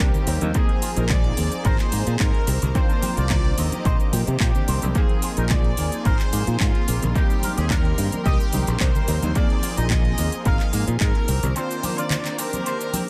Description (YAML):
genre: nu-disco, nu disco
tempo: 109 BPM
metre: 4/4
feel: straight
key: Bb mixolydian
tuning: A4 = 440 Hz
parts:
  - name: brilliant trumpet section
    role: melody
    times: 0.0-13.1 s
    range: F4 to F5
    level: -34 LUFS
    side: equal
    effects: tape echo
  - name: mellow synth brass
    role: accompaniment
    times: 0.0-13.1 s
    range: D3 to Bb4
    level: -32 LUFS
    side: equal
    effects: chorus, dub echo
  - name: clear symphonic violin section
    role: sustained chords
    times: 0.0-13.1 s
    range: Bb4 to D6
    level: -39 LUFS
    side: equal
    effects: sidechain pumping
  - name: electric guitar with an envelope filter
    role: riff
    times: 0.0-13.0 s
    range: Ab3 to Eb5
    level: -36 LUFS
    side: equal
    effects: subtle chorus, dub echo
  - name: fingered electric bass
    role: bass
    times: 0.0-11.5 s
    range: Ab1 to C3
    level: -25 LUFS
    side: equal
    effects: none
  - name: electronic kick drum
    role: drums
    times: 0.0-11.1 s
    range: none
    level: -24 LUFS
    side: equal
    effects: overdrive
  - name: house drum kit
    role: drums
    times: 0.1-13.1 s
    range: handclaps, hi-hat, shaker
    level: -32 LUFS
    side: equal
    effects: overdrive, dub echo
  - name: congas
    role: percussion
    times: 0.1-13.1 s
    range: none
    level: -33 LUFS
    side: equal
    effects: dub echo
room: digital ambience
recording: echo-heavy mix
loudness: -21 LUFS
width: mono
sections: 0.0-13.1 A section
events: break 11.6-13.1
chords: 0.0 Eb6; 0.5 Bb9sus4; 2.5 Cm9; 5.0 Bb9sus4; 7.2 Eb6; 9.4 Bb9sus4; 11.3 Cm9